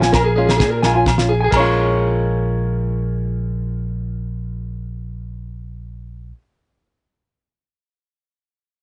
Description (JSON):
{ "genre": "highlife guitar band", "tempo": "130 BPM", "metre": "4/4", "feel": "straight", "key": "Bb minor", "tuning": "A4 = 440 Hz", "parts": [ { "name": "nylon-string guitar", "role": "accompaniment", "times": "0.0-6.4 s", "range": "Ab3 to F4", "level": "-26 LUFS", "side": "equal", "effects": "none" }, { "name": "electric guitar through a small old amp", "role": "arpeggios", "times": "0.0-6.3 s", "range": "Ab4 to Ab5", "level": "-22 LUFS", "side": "equal", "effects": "slapback echo" }, { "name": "fingered electric bass", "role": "bass", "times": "0.0-6.3 s", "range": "Bb1 to Bb2", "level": "-24 LUFS", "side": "equal", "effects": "none" }, { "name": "damped 70s drum kit", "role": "drums", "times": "0.0-1.6 s", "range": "crash cymbal, kick drum, snare drum", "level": "-24 LUFS", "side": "equal", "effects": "none" }, { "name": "agogo bells", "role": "percussion", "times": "0.2-1.6 s", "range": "none", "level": "-26 LUFS", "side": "equal", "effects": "none" } ], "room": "light reverb, small room ambience", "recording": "nothing above 10.6 kHz", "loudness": "-18 LUFS", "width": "mono", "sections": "0.0-1.5 A section; 1.5-5.2 B section", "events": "none", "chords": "0.0 Bbm7" }